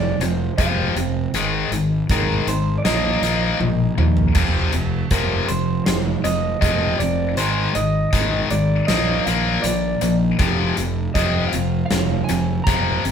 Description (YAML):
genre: quiet-loud alternative rock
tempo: 79 BPM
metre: 4/4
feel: straight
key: unclear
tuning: A4 = 440 Hz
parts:
  - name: electric guitar through a small old amp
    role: melody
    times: 0.0-13.1 s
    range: Bb4 to Bb5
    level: -25 LUFS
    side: right 3 dB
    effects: none
  - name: fingerpicked steel-string acoustic guitar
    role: arpeggios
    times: 0.0-13.1 s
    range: F2 to Eb4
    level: -30 LUFS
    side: right 9 dB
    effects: none
  - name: tight distorted guitar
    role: riff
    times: 0.0-13.1 s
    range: F2 to Bb3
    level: -21 LUFS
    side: left 4 dB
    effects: distortion
  - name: fuzz fingered electric bass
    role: bass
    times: 0.0-13.1 s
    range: F1 to Eb2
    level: -24 LUFS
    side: equal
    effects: overdrive
  - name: huge arena drum kit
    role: drums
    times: 0.2-13.1 s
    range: crash cymbal, hi-hat, kick drum, snare drum, toms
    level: -23 LUFS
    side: equal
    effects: none
room: light reverb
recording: band playing live in one room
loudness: -17 LUFS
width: side -8 dB against mid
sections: 0.0-13.1 A section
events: half time 0.0-13.1; drum fill 3.6-4.4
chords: 0.0 Fm; 1.3 Ab5; 2.8 Bbsus4; 4.4 Fm; 7.4 Ab5; 8.9 Bbsus4; 10.4 Fm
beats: 0.58 | 1.34 2.09 2.85 3.60 | 4.36 5.11 5.87 6.62 | 7.38 8.13 8.89 9.64 | 10.40 11.15 11.91 12.67